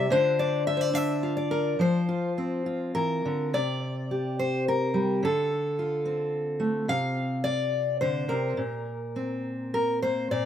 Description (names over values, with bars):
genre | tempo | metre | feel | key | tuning
folk, solo fingerstyle acoustic guitar | 106 BPM | 3/4 | rubato | C mixolydian | A4 = 440 Hz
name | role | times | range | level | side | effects
fingerpicked steel-string acoustic guitar | solo | 0.0-10.5 s | Bb2 to F5 | -25 LUFS | left 1 dB | none
room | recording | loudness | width
little or no reverb | recorded outdoors, with no room sound | -25 LUFS | side -9 dB against mid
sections
0.0-3.5 A section; 3.5-10.5 B section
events
none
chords
0.1 Dm; 3.5 C5; 5.2 Dm7; 6.9 F5/C; 8.6 Bbsus2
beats
| 0.11 0.66 1.23 | 1.80 2.37 2.95 | 3.53 4.10 4.66 | 5.23 5.78 6.33 | 6.89 7.45 8.01 | 8.58 9.16 9.74 | 10.31